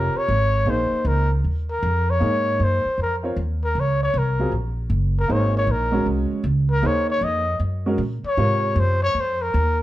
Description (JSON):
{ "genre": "modal jazz", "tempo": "156 BPM", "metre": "4/4", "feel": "swing 65% on 8ths", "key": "unclear", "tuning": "A4 = 440 Hz", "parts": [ { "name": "breathy trumpet", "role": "melody", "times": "0.0-9.8 s", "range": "Bb4 to Eb5", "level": "-22 LUFS", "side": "left 1 dB", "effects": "plate reverb" }, { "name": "warm upright piano", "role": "accompaniment", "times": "0.0-9.0 s", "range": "C3 to Db5", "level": "-25 LUFS", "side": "right 1 dB", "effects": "none" }, { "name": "upright bass", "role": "bass", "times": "0.0-9.8 s", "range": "F1 to Bb2", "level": "-22 LUFS", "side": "equal", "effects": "none" } ], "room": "light reverb", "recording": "nothing above 10.7 kHz", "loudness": "-19 LUFS", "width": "side -15 dB against mid", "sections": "0.0-9.8 A section", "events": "trumpet solo 0.0-9.8", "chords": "0.0 Eb9sus4; 3.8 Ab9sus4", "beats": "0.27 | 0.66 1.05 1.44 1.82 | 2.21 2.60 2.98 3.37 | 3.75 4.14 4.52 4.91 | 5.29 5.68 6.07 6.45 | 6.83 7.22 7.61 7.99 | 8.38 8.76 9.15 9.53" }